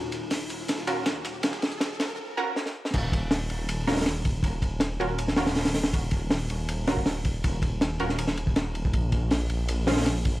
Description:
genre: drum and bass, jungle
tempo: 160 BPM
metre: 4/4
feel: straight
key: Eb minor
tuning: A4 = 439 Hz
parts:
  - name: warbly tape-like pad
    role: sustained chords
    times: 0.0-2.1 s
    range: Db4 to Gb4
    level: -40 LUFS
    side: left 5 dB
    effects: chorus, built-in reverb
  - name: dark detuned saw bass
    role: bass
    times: 0.0-10.4 s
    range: Eb1 to Bb1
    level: -30 LUFS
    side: equal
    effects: none
  - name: riser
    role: sound effects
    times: 0.1-2.2 s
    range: none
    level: -39 LUFS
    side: right 2 dB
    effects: none
  - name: crunchy breakbeat drum kit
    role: drums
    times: 0.1-10.3 s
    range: crash cymbal, hi-hat, kick drum, ride cymbal, snare drum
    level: -26 LUFS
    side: equal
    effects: none
  - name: dusty soul sampler-style drum kit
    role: drums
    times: 0.1-2.1 s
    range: hi-hat, snare drum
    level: -39 LUFS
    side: equal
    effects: high-pass filter on hats, high-pass filter on snare
  - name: orchestra-hit-like synth stab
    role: stabs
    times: 0.9-10.0 s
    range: Ab3 to Bb4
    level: -33 LUFS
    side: right 2 dB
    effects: built-in reverb, dub echo
room: little or no reverb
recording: dry, gritty hardware recording, vinyl crackle, high-pass filter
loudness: -24 LUFS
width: side -17 dB against mid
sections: 0.0-2.9 A section; 2.9-10.4 B section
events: build-up 0.0-2.9; drum fill 0.0-2.2, 2.6-2.9; filter sweep on ambient pad 0.0-2.9; riser 0.1-2.2; break 2.2-2.9; drop 2.9-10.4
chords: 0.0 Ebm9; 8.9 Bbm9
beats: 0.31 0.69 1.06 | 1.44 1.81 2.19 2.56 | 2.94 3.31 3.69 4.06 | 4.44 4.81 5.19 5.56 | 5.94 6.31 6.69 7.06 | 7.44 7.81 8.19 8.56 | 8.94 9.31 9.69 10.06

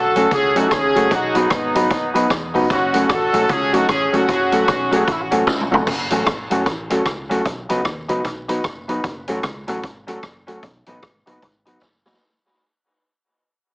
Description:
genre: ska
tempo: 151 BPM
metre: 4/4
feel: swing 61% on 8ths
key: F# dorian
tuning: A4 = 440 Hz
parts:
  - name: warm horn section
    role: melody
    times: 0.0-5.3 s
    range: B3 to A4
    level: -19 LUFS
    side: equal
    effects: dub echo
  - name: fingered electric bass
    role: bass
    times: 0.0-12.2 s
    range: F#1 to E2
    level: -30 LUFS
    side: equal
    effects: tube saturation
  - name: mellow electric guitar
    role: accompaniment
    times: 0.1-12.2 s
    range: F#3 to F#4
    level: -23 LUFS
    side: equal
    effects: wide subtle chorus
  - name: warm upright piano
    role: stabs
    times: 0.2-12.2 s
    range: C#4 to B4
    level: -22 LUFS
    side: equal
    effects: dub echo
  - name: street-band drum kit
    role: drums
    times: 0.2-12.2 s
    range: crash cymbal, hi-hat, kick drum, rim click, snare drum, toms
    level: -24 LUFS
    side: equal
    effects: dub echo
room: moderate studio ambience, RT60 0.5 s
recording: heavily compressed radio sound, multiband compression, vinyl crackle, small speaker sound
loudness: -16 LUFS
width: side -32 dB against mid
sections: 0.0-5.9 A section; 5.9-12.2 B section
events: drum fill 5.5-5.9, 11.8-12.2; fade-out 5.9-12.2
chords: 0.0 F#m; 1.1 B; 2.7 F#m; 7.5 B; 9.0 F#m; 10.6 B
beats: 0.31 0.71 | 1.11 1.51 1.91 2.30 | 2.70 3.10 3.50 3.89 | 4.29 4.68 5.08 5.47 | 5.87 6.27 6.66 7.06 | 7.45 7.85 8.24 8.64 | 9.04 9.43 9.83 10.23 | 10.62 11.02 11.42 11.82

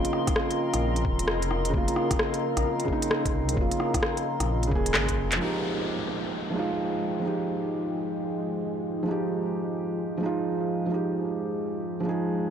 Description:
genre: future garage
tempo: 131 BPM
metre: 4/4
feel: swing 63% on 16ths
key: F minor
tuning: A4 = 440 Hz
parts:
  - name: felt-muted upright piano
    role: accompaniment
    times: 0.0-12.5 s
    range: Db3 to Ab4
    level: -29 LUFS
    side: right 2 dB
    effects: vintage 12-bit sampler grit, sidechain pumping, tape echo
  - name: deep dark ambient pad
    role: sustained chords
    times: 0.0-12.5 s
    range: F3 to Bb5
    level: -32 LUFS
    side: left 1 dB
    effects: chorus, built-in reverb, vintage 12-bit sampler grit, sidechain pumping
  - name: dark detuned saw bass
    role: bass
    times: 0.0-5.4 s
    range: Eb1 to C2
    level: -29 LUFS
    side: left 1 dB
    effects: tube saturation, sidechain pumping
  - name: organic electronic drum kit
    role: drums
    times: 0.0-5.4 s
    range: handclaps, hi-hat, rim click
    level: -29 LUFS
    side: left 1 dB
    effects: low-pass filter on hats, low-pass filter on snare, low-pass filter on room
  - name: drifting glass-harmonics texture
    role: texture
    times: 0.0-5.4 s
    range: C4 to C6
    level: -40 LUFS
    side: left 1 dB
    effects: chorus, built-in reverb
  - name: electronic kick drum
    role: drums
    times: 0.3-5.2 s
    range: none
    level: -29 LUFS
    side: left 1 dB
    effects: overdrive
  - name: downlifter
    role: sound effects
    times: 5.4-9.1 s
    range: none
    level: -37 LUFS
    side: left 1 dB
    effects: none
room: light reverb, digital ambience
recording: dry, gritty hardware recording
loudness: -25 LUFS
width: side -8 dB against mid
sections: 0.0-5.4 A section; 5.4-12.5 B section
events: drum fill 4.9-5.4; band accent 5.3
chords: 0.0 Db6; 5.4 Fm9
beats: 0.36 0.82 1.28 | 1.74 2.20 2.65 3.11 | 3.57 4.03 4.49 4.94 | 5.40 5.86 6.32 6.78 | 7.23 7.69 8.15 8.61 | 9.07 9.52 9.98 10.44 | 10.90 11.36 11.81 12.27

